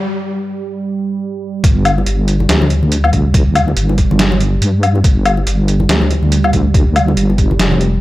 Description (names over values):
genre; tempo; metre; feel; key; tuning
deep dubstep; 141 BPM; 4/4; swing 58% on 16ths, half-time; unclear; A4 = 440 Hz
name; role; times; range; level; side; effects
dark analog pad; sustained chords; 0.0-8.0 s; G3; -21 LUFS; right 4 dB; chorus
deep soft wobble bass; bass; 1.6-8.0 s; F1 to G2; -14 LUFS; equal; chorus
electronic kick drum; drums; 1.6-7.5 s; none; -12 LUFS; equal; overdrive
trip hop sampler-style drum kit; drums; 1.6-7.9 s; hi-hat, snare drum, woodblock; -16 LUFS; left 1 dB; overdrive, high-pass filter on hats, high-pass filter on perc, high-pass filter on snare, high-pass filter on room
bongos and congas; percussion; 2.0-7.8 s; none; -22 LUFS; left 3 dB; dub echo
room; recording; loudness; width
light reverb; none; -11 LUFS; side -16 dB against mid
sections
0.0-1.6 A section; 1.6-8.0 B section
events
break 0.0-1.6; build-up 0.0-1.6; drop 1.6-8.0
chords
0.0 N.C.; 1.6 G5